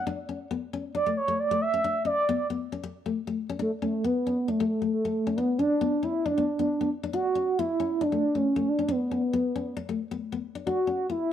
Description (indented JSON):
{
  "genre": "highlife",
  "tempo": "136 BPM",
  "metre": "4/4",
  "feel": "straight",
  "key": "D major",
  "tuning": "A4 = 441 Hz",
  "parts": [
    { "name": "reedy FM lead", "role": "melody", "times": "0.0-11.3 s", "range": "A3 to E5", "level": "-25 LUFS", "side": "right 1 dB", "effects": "chorus, tremolo" },
    { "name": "nylon-string guitar", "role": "accompaniment", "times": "0.0-11.3 s", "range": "A3 to D4", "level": "-32 LUFS", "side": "left 7 dB", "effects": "none" }
  ],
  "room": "moderate small room reverb, RT60 0.6 s",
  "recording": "none",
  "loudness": "-25 LUFS",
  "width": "side -10 dB against mid",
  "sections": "0.0-3.6 A section; 3.6-11.3 B section",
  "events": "soft synth lead solo 0.0-3.6",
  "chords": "0.0 Bm11; 1.8 Bmadd9; 2.7 A; 3.6 D5; 5.4 Bmadd9; 7.1 Aadd9"
}